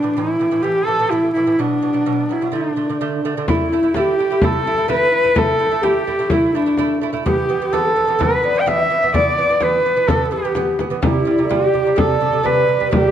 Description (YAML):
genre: mongolian traditional, Mongolian folk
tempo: 127 BPM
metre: 4/4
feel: straight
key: unclear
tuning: A4 = 442 Hz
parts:
  - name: dark horsehead fiddle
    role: melody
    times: 0.0-13.1 s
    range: D4 to G5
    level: -17 LUFS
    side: equal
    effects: none
  - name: lute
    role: arpeggios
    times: 0.0-13.1 s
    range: A2 to E4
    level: -22 LUFS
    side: right 6 dB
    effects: none
  - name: mellow hollow xiao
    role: second line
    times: 3.5-13.1 s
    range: D4 to E5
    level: -22 LUFS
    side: left 5 dB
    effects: none
  - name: frame drum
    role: percussion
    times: 3.5-13.0 s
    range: none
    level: -22 LUFS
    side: left 2 dB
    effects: none
room: wet recital hall reverb, RT60 1.4 s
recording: vinyl crackle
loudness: -15 LUFS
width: side -10 dB against mid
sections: 0.0-3.5 A section; 3.5-13.1 B section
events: none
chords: 0.0 A5; 1.6 B5; 2.5 D5; 3.5 A5; 7.3 E5; 11.0 C